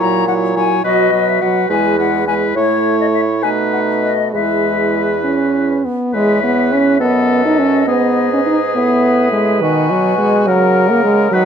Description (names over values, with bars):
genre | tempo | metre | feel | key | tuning
quick classical-period movement for wind quintet | 69 BPM (dotted quarters) | 6/8 | straight | E major | A4 = 440 Hz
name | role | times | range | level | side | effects
silver concert flute | melody | 0.0-11.4 s | C#5 to A#5 | -19 LUFS | left 12 dB | none
warm oboe | second line | 0.0-11.4 s | F#4 to C#5 | -20 LUFS | left 4 dB | none
clear French horn | accompaniment | 0.0-11.4 s | D#3 to D#4 | -16 LUFS | right 1 dB | none
clear clarinet | accompaniment | 0.0-11.4 s | D#4 to C#5 | -21 LUFS | right 12 dB | none
warm bassoon | bass | 0.0-11.4 s | E2 to D#3 | -20 LUFS | right 3 dB | none
room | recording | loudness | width
light reverb | close, detailed microphones | -12 LUFS | side -7 dB against mid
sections
0.0-6.1 A section; 6.1-11.4 B section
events
none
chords
0.0 F#7/A#; 0.8 B; 1.7 E; 2.6 A; 3.4 B7; 4.3 E; 7.0 B7/F#; 7.9 E/G#; 9.6 B5; 10.5 F#/C#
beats
0.00 | 0.85 1.70 | 2.56 3.44 | 4.34 5.24 | 6.14 7.01 | 7.88 8.75 | 9.62 10.48 | 11.34